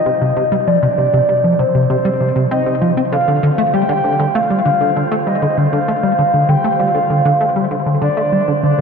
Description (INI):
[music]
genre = ambient, sequencer-driven space music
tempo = 98 BPM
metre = 4/4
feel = straight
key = unclear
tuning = A4 = 440 Hz
[part]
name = soft octave-layered synth lead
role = melody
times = 0.0-8.8 s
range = C5 to G5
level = -16 LUFS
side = equal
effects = chorus, phaser, ping-pong delay
[part]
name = wind-like tuned noise texture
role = texture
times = 0.0-8.8 s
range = C5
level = -28 LUFS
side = equal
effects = built-in reverb
[part]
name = plucky analog bass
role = riff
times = 0.1-8.8 s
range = C3 to C4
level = -15 LUFS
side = equal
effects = analog chorus, ping-pong delay
[sound]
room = wet cathedral reverb, RT60 5.6 s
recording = in a vast, echoing space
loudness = -12 LUFS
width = side -5 dB against mid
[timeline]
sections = 0.0-8.8 A section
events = fade-in on synth texture 0.0-8.8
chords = 0.0 Cm; 3.1 Dm7